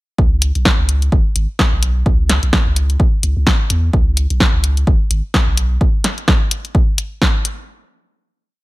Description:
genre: minimal techno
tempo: 128 BPM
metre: 4/4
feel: swing 57% on 16ths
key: C# minor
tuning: A4 = 440 Hz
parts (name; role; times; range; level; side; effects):
- punchy sub bass; bass; 0.2-5.8 s; G#1 to E2; -16 LUFS; equal; sidechain pumping
- electronic kick drum; drums; 0.2-7.3 s; none; -15 LUFS; equal; none
- punchy analog drum machine; drums; 0.4-7.6 s; hi-hat, snare drum; -17 LUFS; equal; none
room: little or no reverb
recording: none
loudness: -13 LUFS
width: side -20 dB against mid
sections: 0.2-7.7 groove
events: none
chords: none

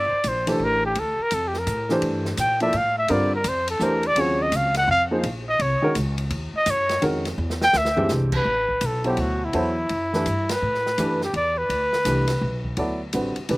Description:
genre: modal jazz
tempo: 168 BPM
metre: 3/4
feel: swing 64% on 8ths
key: G dorian, A dorian from 8.5 s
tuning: A4 = 440 Hz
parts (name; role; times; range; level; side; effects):
- breathy trumpet; melody; 0.0-12.7 s; E4 to G5; -22 LUFS; equal; slapback echo
- upright bass; bass; 0.0-13.6 s; A1 to Bb2; -28 LUFS; equal; none
- open jazz drum kit; drums; 0.2-13.6 s; crash cymbal, hi-hat, kick drum, ride cymbal, snare drum, toms; -32 LUFS; left 1 dB; none
- warm upright piano; accompaniment; 0.5-13.6 s; B2 to D5; -24 LUFS; equal; none
room: little or no reverb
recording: recorded outdoors, with no room sound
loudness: -20 LUFS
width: side -22 dB against mid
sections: 0.0-8.5 A section; 8.5-13.6 B section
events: trumpet solo 0.0-8.5; drum fill 7.4-8.1; band accent 10.4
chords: 0.0 Gm11; 4.2 Ebm11; 7.4 E7alt; 8.5 A9sus4

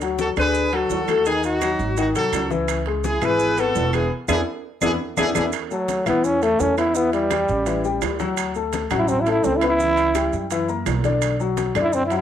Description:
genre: latin, salsa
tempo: 169 BPM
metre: 4/4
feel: straight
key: A major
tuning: A4 = 444 Hz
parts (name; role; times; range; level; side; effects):
- warm grand piano; accompaniment; 0.0-12.2 s; D3 to B5; -23 LUFS; left 6 dB; cassette tape, plate reverb
- upright bass; bass; 0.0-12.2 s; E1 to F#2; -27 LUFS; right 2 dB; none
- congas; percussion; 0.0-12.2 s; none; -33 LUFS; left 8 dB; none
- maracas; percussion; 0.0-12.2 s; none; -37 LUFS; right 16 dB; none
- timbales; percussion; 0.0-12.2 s; none; -31 LUFS; right 14 dB; none
- brilliant horn section; melody; 0.2-5.4 s; D4 to B4; -22 LUFS; equal; cassette tape
- claves; percussion; 0.4-11.9 s; none; -31 LUFS; right 13 dB; none
- growling trombone; melody; 5.7-12.2 s; F#3 to E4; -20 LUFS; right 1 dB; cassette tape
room: wet studio reverb, RT60 0.7 s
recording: home recording on cassette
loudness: -18 LUFS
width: side -10 dB against mid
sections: 0.0-5.5 A section; 5.5-12.2 B section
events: band accent 4.1-5.5; drum fill 4.5-5.5; trombone solo 5.5-12.2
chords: 0.0 D; 1.3 D#madd11; 2.0 G#7b9; 2.7 C#m7; 4.1 E7; 5.5 A5; 7.0 Em; 7.7 A5; 8.4 Dmaj7; 9.8 C#dim; 10.5 F#7; 11.2 Bm

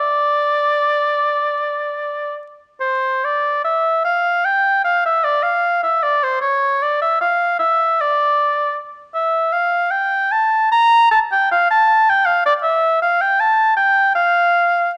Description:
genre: classical, baroque-style fantasia for unaccompanied oboe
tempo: 77 BPM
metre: 4/4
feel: uneven beats, rubato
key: D minor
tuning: A4 = 439 Hz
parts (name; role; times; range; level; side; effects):
- clear oboe; solo; 0.0-14.9 s; C5 to Bb5; -16 LUFS; equal; none
room: moderate recital hall reverb, RT60 1.5 s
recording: dark, warm production, vinyl crackle, nothing above 10.8 kHz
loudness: -17 LUFS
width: mono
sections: 0.0-3.2 A section; 3.2-15.0 B section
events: none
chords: none

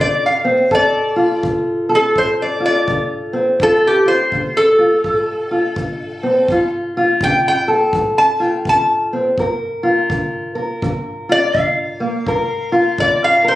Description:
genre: acoustic country blues, solo or duo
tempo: 83 BPM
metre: 4/4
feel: swing 62% on 8ths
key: D minor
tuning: A4 = 436 Hz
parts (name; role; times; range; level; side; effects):
- lap resonator guitar; melody; 0.0-13.6 s; G4 to A5; -15 LUFS; equal; none
- fingerpicked steel-string acoustic guitar; accompaniment; 0.0-13.6 s; D2 to Bb4; -17 LUFS; equal; none
- kick drum; drums; 0.7-13.2 s; none; -29 LUFS; equal; none
room: moderate studio ambience, RT60 0.5 s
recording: recorded on a phone in the room, studio reverb, compression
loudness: -14 LUFS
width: side -15 dB against mid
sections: 0.0-13.6 A section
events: none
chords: 0.0 Dm7; 9.4 Gm7

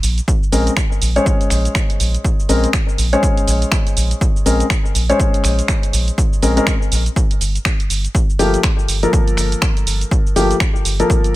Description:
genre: deep house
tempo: 122 BPM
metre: 4/4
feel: swing 59% on 16ths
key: unclear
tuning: A4 = 439 Hz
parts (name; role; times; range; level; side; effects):
- round analog bass; bass; 0.0-11.0 s; G1 to Bb1; -17 LUFS; equal; sidechain pumping
- punchy analog drum machine; drums; 0.0-11.3 s; finger snaps, hi-hat, shaker; -22 LUFS; right 2 dB; small room ambience
- electronic kick drum; drums; 0.3-11.2 s; none; -17 LUFS; equal; small room ambience
- felt-muted upright piano; stabs; 0.5-11.4 s; F3 to Db5; -19 LUFS; left 2 dB; sidechain pumping, low-pass filter, ping-pong delay
room: little or no reverb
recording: none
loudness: -14 LUFS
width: side -17 dB against mid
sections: 0.0-11.4 A section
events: none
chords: 0.0 Bbm9; 7.2 Gm9

